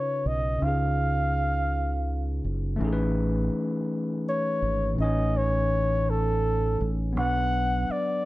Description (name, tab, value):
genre	slow six-eight R&B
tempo	55 BPM (dotted quarters)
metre	6/8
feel	straight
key	unclear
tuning	A4 = 440 Hz
part	mellow flugelhorn	melody	0.0-8.3 s	A4 to F#5	-27 LUFS	equal	slapback echo
part	overdriven tine electric piano	accompaniment	0.0-8.3 s	A2 to G#5	-29 LUFS	left 1 dB	none
part	deep dub fingered electric bass	bass	0.3-7.9 s	F#1 to C#2	-27 LUFS	right 1 dB	none
room	light reverb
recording	dark, warm production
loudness	-24 LUFS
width	side -17 dB against mid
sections	0.0-2.8 A section; 2.8-8.3 B section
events	none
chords	0.0 C#9; 2.8 Amaj9#11; 7.2 Bm